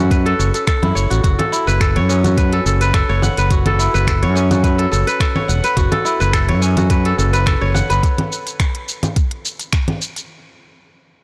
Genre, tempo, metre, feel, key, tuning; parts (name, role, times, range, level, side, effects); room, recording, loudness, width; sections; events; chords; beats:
organic downtempo; 106 BPM; 4/4; swing 54% on 16ths; F# minor pentatonic; A4 = 440 Hz
kora; arpeggios; 0.0-9.1 s; C#4 to F#5; -21 LUFS; equal; delay
fretless electric bass; bass; 0.0-8.0 s; E1 to F#2; -18 LUFS; equal; analog chorus
electronic kick drum; drums; 0.1-9.9 s; -20 LUFS; equal
organic electronic drum kit; drums; 0.1-10.3 s; congas, finger snaps, hi-hat, shaker; -25 LUFS; equal; soft clipping on snare
light reverb; blown-out, overdriven recording, overdrive; -16 LUFS; mono
0.0-10.3 A section
0.0 F#m7
0.11 0.68 | 1.24 1.81 2.37 2.94 | 3.51 4.07 4.64 5.21 | 5.77 6.34 6.90 7.47 | 8.04 8.60 9.17 9.73